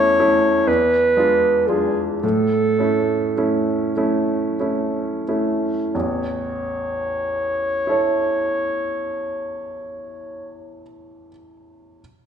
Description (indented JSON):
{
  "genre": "classical, romantic duo for clarinet and grand piano",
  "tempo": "29-44 BPM (dotted quarters)",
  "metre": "6/8",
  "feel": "rubato",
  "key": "A major",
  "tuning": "A4 = 438 Hz",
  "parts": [
    { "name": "warm clarinet", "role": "melody", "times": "0.0-10.6 s", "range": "G#4 to C#5", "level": "-20 LUFS", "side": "equal", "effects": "none" },
    { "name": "bright baby grand piano", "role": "accompaniment", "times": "0.0-12.0 s", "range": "A1 to C#5", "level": "-22 LUFS", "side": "right 1 dB", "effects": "none" }
  ],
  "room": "moderate recital hall reverb, RT60 1.3 s",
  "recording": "recorded in a church or concert hall, nothing above 10.9 kHz",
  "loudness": "-18 LUFS",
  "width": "side -8 dB against mid",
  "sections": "0.0-5.9 A section; 5.9-9.8 B section",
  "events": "slowing down 0.0-5.9",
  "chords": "0.0 A/E; 0.7 E7b9; 2.2 A",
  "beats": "0.67 | 2.22 3.95 | 5.93 7.87"
}